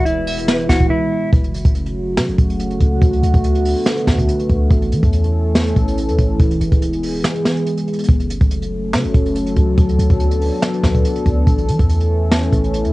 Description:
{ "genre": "hip hop, trap", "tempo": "142 BPM", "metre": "4/4", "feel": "half-time", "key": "F# minor", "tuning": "A4 = 436 Hz", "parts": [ { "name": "mellow electric guitar", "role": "melody", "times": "0.0-1.3 s", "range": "E4 to F#4", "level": "-21 LUFS", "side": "equal", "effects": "analog delay" }, { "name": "glassy wavetable pluck", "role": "second line", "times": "0.0-0.9 s", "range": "B4 to E5", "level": "-28 LUFS", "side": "left 2 dB", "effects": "chorus, cassette tape, analog delay" }, { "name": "dark analog pad", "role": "sustained chords", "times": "0.0-12.9 s", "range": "B2 to A4", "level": "-20 LUFS", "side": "equal", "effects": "chorus, cassette tape" }, { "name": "clean 808-style bass", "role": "bass", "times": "0.0-12.9 s", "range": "E1 to E3", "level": "-19 LUFS", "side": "equal", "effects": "none" }, { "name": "jazz brush drum kit", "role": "drums", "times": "0.1-12.9 s", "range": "hi-hat, kick drum, snare drum", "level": "-16 LUFS", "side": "equal", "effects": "cassette tape" } ], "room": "little or no reverb", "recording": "home recording on cassette, nothing above 10.7 kHz", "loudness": "-14 LUFS", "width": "side -19 dB against mid", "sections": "0.0-1.3 A section; 1.3-12.9 B section", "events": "break 0.9-1.3, 7.2-8.1", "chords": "0.0 E; 1.3 F#m; 3.0 D6; 4.7 A; 6.4 E; 8.1 F#m; 9.8 D6; 11.5 A", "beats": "0.06 0.48 0.90 | 1.33 1.75 2.17 2.60 | 3.02 3.44 3.86 4.29 | 4.71 5.13 5.55 5.97 | 6.40 6.82 7.24 7.67 | 8.09 8.51 8.93 9.36 | 9.78 10.20 10.62 11.04 | 11.47 11.89 12.31 12.73" }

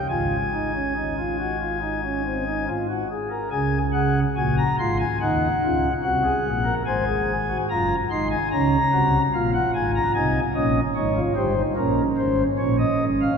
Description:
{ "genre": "classical, baroque-style 3-part fugue for pipe organ", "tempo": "73 BPM", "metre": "4/4", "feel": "straight", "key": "Db major", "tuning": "A4 = 441 Hz", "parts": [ { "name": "pipe organ, flutes", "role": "solo", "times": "0.0-13.4 s", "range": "Gb1 to C6", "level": "-20 LUFS", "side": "equal", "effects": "none" } ], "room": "wet cathedral reverb, RT60 4.2 s", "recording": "recorded in a church or concert hall", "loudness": "-20 LUFS", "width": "side -6 dB against mid", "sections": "0.0-3.5 A section; 3.5-13.4 B section", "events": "none", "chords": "0.1 Ab5; 3.5 Db; 5.2 Cdim; 6.9 Ab; 8.5 Db; 10.1 Ab; 11.8 Bbm11/Ab", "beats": "| 0.10 0.96 1.82 2.68 | 3.53 4.38 5.21 6.04 | 6.86 7.68 8.50 9.32 | 10.13 10.94 11.76 12.59" }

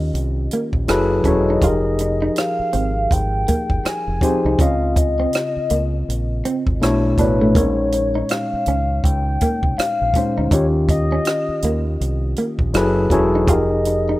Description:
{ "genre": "R&B, neo-soul", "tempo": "81 BPM", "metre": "4/4", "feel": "swing 61% on 16ths", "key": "Bb dorian", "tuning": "A4 = 438 Hz", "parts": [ { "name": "hollow clarinet-like synth lead", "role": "melody", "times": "0.0-14.2 s", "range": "C#5 to Ab5", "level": "-24 LUFS", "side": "left 1 dB", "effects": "chorus, phaser" }, { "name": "overdriven tine electric piano", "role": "accompaniment", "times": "0.0-14.2 s", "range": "Bb2 to Eb5", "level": "-20 LUFS", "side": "left 2 dB", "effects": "none" }, { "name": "deep dub fingered electric bass", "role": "bass", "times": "0.0-14.1 s", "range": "Fb1 to Eb2", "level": "-21 LUFS", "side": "equal", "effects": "none" }, { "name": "compact cocktail drum kit", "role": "drums", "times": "0.1-14.1 s", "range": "hi-hat, kick drum, rim click", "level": "-21 LUFS", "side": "right 1 dB", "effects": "none" }, { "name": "electric guitar at the edge of break-up", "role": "second line", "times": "0.5-14.2 s", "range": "A3 to F4", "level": "-24 LUFS", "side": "right 2 dB", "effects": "none" } ], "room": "studio ambience", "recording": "rough home demo mix", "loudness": "-16 LUFS", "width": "side -17 dB against mid", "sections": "0.0-14.2 A section", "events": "none", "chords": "0.0 Eb9; 0.9 Gbm11; 1.6 Fm11; 4.6 Dbmaj9; 6.8 Bm11; 7.5 Bbm11; 10.5 Eb9; 12.7 Gbm11; 13.5 Fm11", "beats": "0.14 0.88 | 1.62 2.36 3.10 3.84 | 4.58 5.33 6.07 6.81 | 7.55 8.29 9.03 9.77 | 10.51 11.25 11.99 12.73 | 13.47" }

